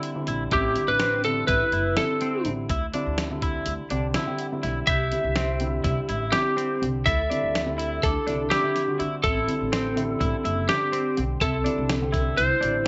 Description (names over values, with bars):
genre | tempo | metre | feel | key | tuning
progressive instrumental, band music in an uneven meter | 248 BPM (eighths) | 9/8 | straight | unclear | A4 = 439 Hz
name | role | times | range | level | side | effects
dark baby grand piano | accompaniment | 0.0-12.9 s | D3 to F#5 | -34 LUFS | equal | none
twelve-string electric guitar | arpeggios | 0.0-12.9 s | C4 to E4 | -34 LUFS | equal | none
dusty soul sampler-style drum kit | drums | 0.0-12.7 s | hi-hat, kick drum, snare drum | -32 LUFS | equal | none
upright bass | bass | 0.3-12.8 s | F#1 to D3 | -32 LUFS | equal | none
lightly driven lead guitar | melody | 0.5-12.9 s | G4 to E5 | -27 LUFS | equal | none
vibraphone with hard mallets | second line | 0.5-12.9 s | C4 to A4 | -35 LUFS | equal | none
room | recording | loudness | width
moderate spring reverb, RT60 1.4 s | nothing above 7.8 kHz | -25 LUFS | mono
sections
0.0-12.9 A section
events
grand piano fill 4.2-4.9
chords
0.0 Dsus2; 0.5 Am; 2.7 Dsus2; 4.9 C; 7.1 Dsus2; 9.2 Am; 11.4 C6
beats
0.03 0.28 | 0.52 0.76 1.00 1.25 1.49 1.73 1.97 2.22 2.46 | 2.70 2.94 3.19 3.43 3.67 3.91 4.16 4.40 4.64 | 4.88 5.12 5.37 5.61 5.85 6.09 6.33 6.58 6.82 | 7.06 7.30 7.54 7.79 8.03 8.27 8.51 8.75 8.99 | 9.24 9.48 9.72 9.96 10.20 10.44 10.69 10.93 11.17 | 11.41 11.65 11.89 12.13 12.38 12.62 12.86